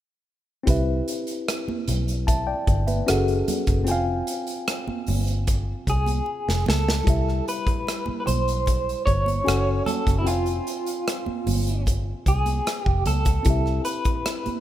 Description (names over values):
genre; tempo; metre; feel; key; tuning
lush 1970s-style soul; 75 BPM; 4/4; straight; C major; A4 = 440 Hz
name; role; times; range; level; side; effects
tine electric piano; accompaniment; 0.6-14.6 s; G3 to A5; -28 LUFS; left 2 dB; medium stereo tremolo
vintage muted fingered electric bass; bass; 0.7-14.5 s; F1 to Db2; -24 LUFS; equal; none
modern studio drum kit; drums; 0.7-14.6 s; hi-hat, kick drum, rim click, snare drum; -26 LUFS; equal; none
congas; percussion; 0.7-14.6 s; none; -33 LUFS; right 8 dB; none
electric guitar through a small old amp; melody; 5.9-14.6 s; E4 to Db5; -27 LUFS; right 1 dB; tremolo
room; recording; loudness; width
light reverb; rough home demo mix; -21 LUFS; side -12 dB against mid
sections
0.7-7.1 A section; 7.1-14.6 B section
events
drum fill 6.3-7.1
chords
0.7 Cmaj7; 3.1 F#madd9; 3.9 Fmadd9; 7.1 Cmaj7; 9.5 F#madd9; 10.3 Fmadd9; 13.5 Cmaj7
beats
| 0.67 1.47 2.27 3.07 | 3.87 4.67 5.47 6.27 | 7.07 7.87 8.67 9.47 | 10.27 11.06 11.86 12.66 | 13.46 14.26